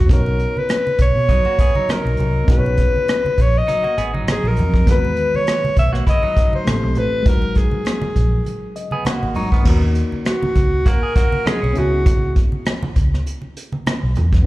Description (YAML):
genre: lush 1970s-style soul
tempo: 100 BPM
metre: 4/4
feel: swing 54% on 16ths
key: B major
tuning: A4 = 441 Hz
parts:
  - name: breathy alto saxophone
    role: melody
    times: 0.0-12.4 s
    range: F#4 to E5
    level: -20 LUFS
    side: left 1 dB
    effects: slapback echo
  - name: reed electric piano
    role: accompaniment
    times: 0.0-14.5 s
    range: D#3 to C#6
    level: -27 LUFS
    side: left 3 dB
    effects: fast tremolo, slapback echo
  - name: vintage muted fingered electric bass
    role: bass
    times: 0.0-14.4 s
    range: G#1 to B2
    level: -19 LUFS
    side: equal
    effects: none
  - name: vintage brush drum kit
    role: drums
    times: 0.1-14.5 s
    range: crash cymbal, hi-hat, kick drum, rim click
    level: -17 LUFS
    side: equal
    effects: none
  - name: congas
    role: percussion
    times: 0.1-14.3 s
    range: none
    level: -28 LUFS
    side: right 2 dB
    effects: none
  - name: clean electric guitar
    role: riff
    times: 1.3-11.9 s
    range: D#3 to G#4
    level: -26 LUFS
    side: right 3 dB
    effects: phaser, slapback echo
room: small room ambience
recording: live gig heard through the venue's PA, club ambience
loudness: -15 LUFS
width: side -17 dB against mid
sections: 0.0-9.7 A section; 9.7-14.5 B section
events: reed electric piano fill 8.5-9.7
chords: 0.1 Bmaj9; 4.9 Emaj9; 6.7 Am7; 7.3 G#5; 9.7 D#m7; 11.8 F#9sus4/C#